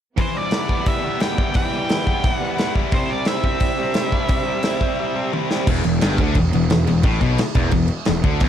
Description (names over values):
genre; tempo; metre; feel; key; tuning
heavy metal; 174 BPM; 4/4; straight; E minor; A4 = 440 Hz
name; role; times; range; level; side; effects
high-gain lead guitar; melody; 0.2-5.3 s; C5 to G5; -26 LUFS; right 1 dB; distortion
clear studio string section; sustained chords; 0.2-5.7 s; C3 to G4; -33 LUFS; right 2 dB; none
heavy high-gain guitar; riff; 0.2-8.5 s; E2 to E4; -24 LUFS; left 9 dB; distortion
tight distorted guitar; riff; 0.2-8.5 s; E2 to E4; -26 LUFS; right 12 dB; distortion
modern studio drum kit; drums; 0.2-8.5 s; crash cymbal, hi-hat, kick drum, snare drum, toms; -21 LUFS; equal; none
overdriven electric guitar; riff; 5.7-8.5 s; E2 to D3; -26 LUFS; right 1 dB; none
fuzz picked electric bass; bass; 5.7-8.5 s; E1 to D2; -21 LUFS; equal; overdrive
room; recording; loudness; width
small room ambience; dark, warm production; -17 LUFS; side -10 dB against mid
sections
0.2-5.7 A section; 5.7-8.5 B section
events
drum fill 5.3-5.7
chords
0.2 Em; 2.9 C; 5.7 Em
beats
| 0.18 0.52 0.86 1.21 | 1.55 1.90 2.24 2.59 | 2.93 3.27 3.62 3.96 | 4.31 4.65 5.00 5.34 | 5.68 6.03 6.37 6.71 | 7.05 7.39 7.74 8.08 | 8.42